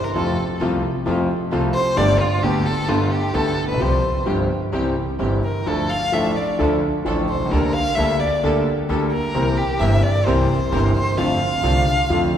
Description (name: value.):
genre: tango.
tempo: 131 BPM.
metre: 4/4.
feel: rubato.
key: F major.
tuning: A4 = 440 Hz.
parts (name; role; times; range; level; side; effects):
warm violin; second line; 0.0-12.4 s; F4 to F5; -23 LUFS; equal; none.
warm studio string section; stabs; 0.1-12.3 s; Bb3 to Bb4; -29 LUFS; right 4 dB; none.
clear concert grand piano; accompaniment; 0.2-12.3 s; G1 to A4; -21 LUFS; left 1 dB; none.
upright bass; bass; 0.2-12.3 s; G1 to F2; -24 LUFS; right 1 dB; none.
room: wet concert hall reverb, RT60 2.5 s.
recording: recorded in a church or concert hall.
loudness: -17 LUFS.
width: side -9 dB against mid.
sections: 0.0-12.4 A section.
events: violin solo 0.0-12.4.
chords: 0.2 F; 2.0 Gadd9; 3.8 Csus4; 4.7 C; 5.7 Dm; 7.5 Gmadd9/D; 9.3 C7; 11.2 F6.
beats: | 0.15 0.61 1.07 1.52 | 1.98 2.43 2.89 3.34 | 3.80 4.26 4.73 5.20 | 5.67 6.13 6.60 7.06 | 7.52 7.98 8.44 8.89 | 9.35 9.81 10.27 10.72 | 11.18 11.64 12.11.